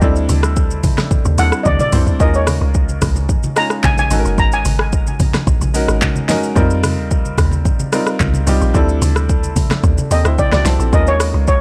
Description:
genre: amapiano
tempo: 110 BPM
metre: 4/4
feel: straight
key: unclear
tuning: A4 = 440 Hz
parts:
  - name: bright grand piano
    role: accompaniment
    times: 0.0-11.6 s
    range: G3 to A5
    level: -23 LUFS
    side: equal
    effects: none
  - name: woody log drum bass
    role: bass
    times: 0.0-11.6 s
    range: Gb1 to F2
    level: -19 LUFS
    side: equal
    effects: none
  - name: deep house drum kit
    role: drums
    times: 0.0-11.6 s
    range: handclaps, hi-hat, kick drum, rim click, shaker, snare drum, toms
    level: -20 LUFS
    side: equal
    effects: none
  - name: congas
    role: percussion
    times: 0.0-10.8 s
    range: none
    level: -25 LUFS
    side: equal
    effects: none
  - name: steel pan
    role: melody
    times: 1.4-4.9, 10.1-11.6 s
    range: Db5 to Bb5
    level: -21 LUFS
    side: equal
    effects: tape echo
room: studio ambience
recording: dry, gritty hardware recording, cassette tape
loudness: -15 LUFS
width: mono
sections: 0.0-10.9 A section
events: drop 0.0-10.9; drum fill 1.7-2.2; grand piano fill 9.8-10.9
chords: 0.0 D9sus4; 2.2 Eb9sus4; 4.1 Ab9sus4; 6.6 F9sus4; 8.7 D9sus4; 10.9 Eb9sus4

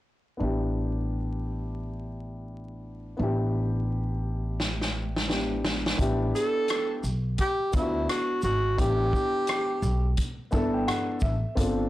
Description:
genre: hip hop, jazz-hop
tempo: 86 BPM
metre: 4/4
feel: swing 62% on 16ths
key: unclear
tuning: A4 = 440 Hz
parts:
  - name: dark baby grand piano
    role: accompaniment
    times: 0.4-11.9 s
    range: B3 to A5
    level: -31 LUFS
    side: left 2 dB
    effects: none
  - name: upright bass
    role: bass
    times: 0.4-11.9 s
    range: G1 to D2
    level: -29 LUFS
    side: equal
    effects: tube saturation
  - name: vintage drum kit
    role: drums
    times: 4.6-11.8 s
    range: hi-hat, kick drum, rim click, shaker, snare drum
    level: -29 LUFS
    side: equal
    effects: soft clipping on snare
  - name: breathy tenor saxophone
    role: melody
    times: 6.4-10.2 s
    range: E4 to A4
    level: -27 LUFS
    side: right 1 dB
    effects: none
room: little or no reverb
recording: blown-out, overdriven recording, vinyl crackle, overdrive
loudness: -25 LUFS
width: side -15 dB against mid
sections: 0.4-6.0 A section; 6.0-11.9 B section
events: drum fill 4.6-6.0; grand piano fill 10.2-11.6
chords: 0.4 A9sus4

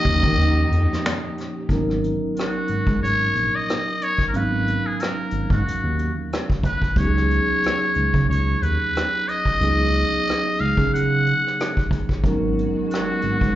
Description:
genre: R&B, neo-soul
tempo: 91 BPM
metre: 4/4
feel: swing 56% on 16ths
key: G# dorian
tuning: A4 = 439 Hz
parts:
  - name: trumpet with metal mute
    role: melody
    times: 0.0-13.6 s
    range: F#4 to F#5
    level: -23 LUFS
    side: left 1 dB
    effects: plate reverb, slapback echo, tape echo
  - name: mellow tine electric piano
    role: accompaniment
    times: 0.0-13.6 s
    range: E#3 to E#5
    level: -26 LUFS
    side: right 1 dB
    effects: fast stereo tremolo, plate reverb, slapback echo
  - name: warm studio string section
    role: sustained chords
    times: 0.0-1.7, 12.2-13.6 s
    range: D#3 to G4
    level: -32 LUFS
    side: left 1 dB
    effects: plate reverb
  - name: vintage brush drum kit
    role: drums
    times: 0.0-13.5 s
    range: finger snaps, hi-hat, kick drum, rim click, snare drum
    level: -24 LUFS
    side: equal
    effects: none
  - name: smooth synth bass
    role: bass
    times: 0.1-13.5 s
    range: G#1 to D#3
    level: -21 LUFS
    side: equal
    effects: none
room: light reverb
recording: live gig heard through the venue's PA, club reverb, nothing above 7.7 kHz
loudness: -19 LUFS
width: side -13 dB against mid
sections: 0.0-1.7 A section; 1.7-13.6 B section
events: break 0.4-1.7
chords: 0.0 D#9; 1.7 G#m11; 7.0 C#9sus4; 12.2 G#m11

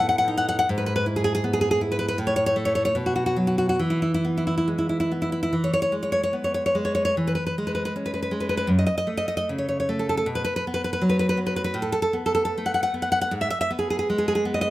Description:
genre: romantic piece for solo classical guitar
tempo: 68-82 BPM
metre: 2/4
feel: rubato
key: E major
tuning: A4 = 440 Hz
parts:
  - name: nylon-string guitar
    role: solo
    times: 0.0-14.7 s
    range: F#2 to F#5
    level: -21 LUFS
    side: equal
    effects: none
room: moderate recital hall reverb, RT60 1.4 s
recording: close, detailed microphones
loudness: -22 LUFS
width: side -16 dB against mid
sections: 0.0-5.5 A section; 5.5-14.7 A section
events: none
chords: 0.0 B7/A; 0.7 E/G#; 2.2 N.C.; 2.9 B5; 3.8 E; 5.5 E (rootless); 8.7 F#m (rootless); 10.2 B5; 11.8 F#madd11/A; 13.3 G#m

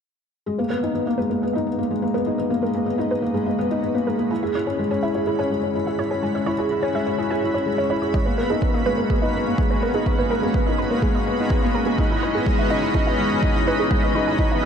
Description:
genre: piano and strings electronica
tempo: 125 BPM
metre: 4/4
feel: straight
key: G# minor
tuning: A4 = 440 Hz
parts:
  - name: granular cloud pad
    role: sustained chords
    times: 1.9-14.7 s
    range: E3 to B5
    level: -27 LUFS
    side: equal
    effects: built-in reverb, sidechain pumping
  - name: warbly dusty pluck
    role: arpeggios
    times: 0.5-14.6 s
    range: G#4 to G#5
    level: -29 LUFS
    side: right 4 dB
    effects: chorus, sidechain pumping, digital delay
  - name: felt-muted upright piano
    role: riff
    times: 0.5-14.7 s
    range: G#3 to G#4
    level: -22 LUFS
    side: left 1 dB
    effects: digital delay
  - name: electronic kick drum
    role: drums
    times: 8.1-14.5 s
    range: none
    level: -22 LUFS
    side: equal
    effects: none
room: moderate lush hall reverb, RT60 2.3 s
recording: dark, warm production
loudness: -19 LUFS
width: side -7 dB against mid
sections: 0.5-14.7 A section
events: fade-in on ambient pad 0.5-14.7; filter sweep on synth arpeggio sound 0.5-14.7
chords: 0.5 G#madd9; 4.3 C#m; 8.1 G#madd9; 12.0 Emaj7

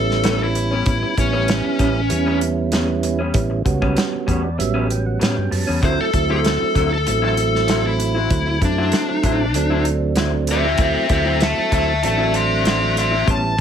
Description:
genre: straight-eighth soul blues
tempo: 97 BPM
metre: 4/4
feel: straight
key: unclear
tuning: A4 = 440 Hz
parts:
  - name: smooth overdriven lead guitar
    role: melody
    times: 0.0-13.6 s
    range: C#4 to C6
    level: -20 LUFS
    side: left 3 dB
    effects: none
  - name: tonewheel organ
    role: accompaniment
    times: 0.0-13.6 s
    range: F#3 to A5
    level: -23 LUFS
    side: right 7 dB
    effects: overdrive, slow rotary speaker, plate reverb
  - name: fretless electric bass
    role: bass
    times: 0.0-13.6 s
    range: A1 to A2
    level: -22 LUFS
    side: equal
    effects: none
  - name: warm soul drum kit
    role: drums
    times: 0.1-13.6 s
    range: hi-hat, kick drum, snare drum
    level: -22 LUFS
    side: equal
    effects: none
  - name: electric guitar through a small old amp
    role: stabs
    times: 0.2-13.6 s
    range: A2 to E4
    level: -27 LUFS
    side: left 3 dB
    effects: none
room: light reverb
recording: none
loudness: -16 LUFS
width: side -8 dB against mid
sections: 0.0-13.6 A section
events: tonewheel organ fill 4.0-5.8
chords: 0.0 A9; 5.8 D9

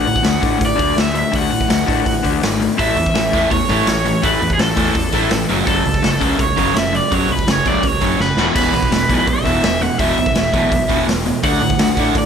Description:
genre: punk rock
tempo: 166 BPM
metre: 4/4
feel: straight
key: A major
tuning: A4 = 439 Hz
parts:
  - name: cranked stack guitar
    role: melody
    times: 0.0-12.3 s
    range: G#4 to F#5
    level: -19 LUFS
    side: right 2 dB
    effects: overdrive
  - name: crunchy overdriven guitar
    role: riff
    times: 0.0-12.3 s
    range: E2 to D4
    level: -20 LUFS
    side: left 12 dB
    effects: none
  - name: fuzz picked electric bass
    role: bass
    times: 0.1-12.3 s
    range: E1 to A2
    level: -23 LUFS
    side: right 1 dB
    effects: overdrive
  - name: raw garage drum kit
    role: drums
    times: 0.1-12.2 s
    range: crash cymbal, hi-hat, kick drum, snare drum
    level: -19 LUFS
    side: equal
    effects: none
  - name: cranked stack guitar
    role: riff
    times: 2.8-12.3 s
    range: E2 to D4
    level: -21 LUFS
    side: right 13 dB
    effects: overdrive
room: light reverb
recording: none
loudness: -14 LUFS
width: side -7 dB against mid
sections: 0.0-12.3 A section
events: drum fill 8.2-8.6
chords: 0.0 D; 2.8 A; 5.5 F#m; 8.4 E5; 11.4 D

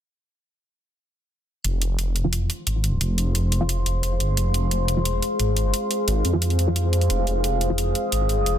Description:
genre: dark technical drum and bass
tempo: 176 BPM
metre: 4/4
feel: straight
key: F minor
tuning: A4 = 440 Hz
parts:
  - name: deep dark ambient pad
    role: sustained chords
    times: 3.2-8.6 s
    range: Ab4 to Eb6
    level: -26 LUFS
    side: left 1 dB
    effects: chorus, built-in reverb
  - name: phased detuned saw bass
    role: bass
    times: 1.6-8.6 s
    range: F1 to F2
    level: -22 LUFS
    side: equal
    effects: phaser, tube saturation
  - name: electronic hi-hat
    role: drums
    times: 1.6-8.5 s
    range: none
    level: -28 LUFS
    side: equal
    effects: overdrive
  - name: filtered dub chord stab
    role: stabs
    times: 2.2-8.6 s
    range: F3 to F4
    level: -30 LUFS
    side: equal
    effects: phaser, lush chorus, ping-pong delay
room: light reverb, digital ambience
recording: dense, heavily limited modern master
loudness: -20 LUFS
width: side -10 dB against mid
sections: 1.6-8.6 A section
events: none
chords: 1.6 Fm

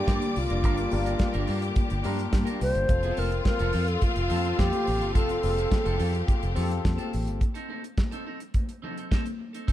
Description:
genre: disco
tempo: 106 BPM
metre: 4/4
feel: straight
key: unclear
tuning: A4 = 440 Hz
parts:
  - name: mellow alto flute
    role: melody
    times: 0.0-6.2 s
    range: F4 to C5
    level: -30 LUFS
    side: equal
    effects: tape echo
  - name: clear studio string section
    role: second line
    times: 0.0-7.1 s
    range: F4 to D6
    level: -36 LUFS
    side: left 4 dB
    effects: none
  - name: barky tine electric piano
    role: accompaniment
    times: 0.0-7.4 s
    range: G3 to C5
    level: -35 LUFS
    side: left 6 dB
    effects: overdrive
  - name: clean electric guitar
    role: accompaniment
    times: 0.0-9.7 s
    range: C4 to Bb4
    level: -38 LUFS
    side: right 3 dB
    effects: none
  - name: clear studio string section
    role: sustained chords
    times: 0.0-7.4 s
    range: C3 to G4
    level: -36 LUFS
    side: left 2 dB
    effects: none
  - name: fingered electric bass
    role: bass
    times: 0.1-7.4 s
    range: F1 to G2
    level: -28 LUFS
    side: equal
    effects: none
  - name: damped 70s drum kit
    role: drums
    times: 0.1-9.7 s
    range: hi-hat, kick drum, snare drum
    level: -27 LUFS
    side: equal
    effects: none
  - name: congas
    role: percussion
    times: 0.1-9.7 s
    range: none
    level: -38 LUFS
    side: left 3 dB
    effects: none
room: little or no reverb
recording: none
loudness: -24 LUFS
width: side -13 dB against mid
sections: 0.0-7.4 A section; 7.4-9.7 B section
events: none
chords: 0.0 Gm7; 2.9 F; 7.4 Cm6

